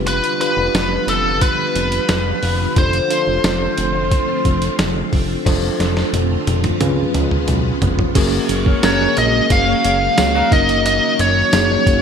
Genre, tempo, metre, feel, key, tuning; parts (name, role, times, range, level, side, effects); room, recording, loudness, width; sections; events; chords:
1980s-style pop; 89 BPM; 4/4; straight; F# major from 8.2 s; A4 = 442 Hz
bell-like tine electric piano; accompaniment; 0.0-12.0 s; A#3 to C#5; -22 LUFS; right 1 dB; fast stereo tremolo
phased string machine; sustained chords; 0.0-12.0 s; Db3 to F#4; -24 LUFS; equal; ensemble chorus, phaser
fat analog bass; bass; 0.0-12.0 s; F1 to Db2; -21 LUFS; equal
biting lead guitar; melody; 0.1-4.8, 8.8-12.0 s; A4 to E#5; -17 LUFS; left 1 dB; overdrive, digital delay
boom bap sampler-style drum kit; drums; 0.1-12.0 s; crash cymbal, hi-hat, kick drum, snare drum, tambourine, toms; -19 LUFS; equal
overdriven electric guitar; accompaniment; 8.1-12.0 s; D#3 to F#4; -29 LUFS; right 6 dB; analog chorus
warm horn section; stabs; 8.7-10.6 s; C#4 to C#5; -27 LUFS; left 5 dB; digital delay
light reverb, digital ambience; bright 1980s-style digital production; -14 LUFS; side -7 dB against mid
0.0-5.5 A section; 5.5-8.2 B section; 8.2-12.0 C section
drum fill 5.5-8.2
0.0 G7/F; 2.8 Dm7/F; 6.8 Db7; 8.2 F#add9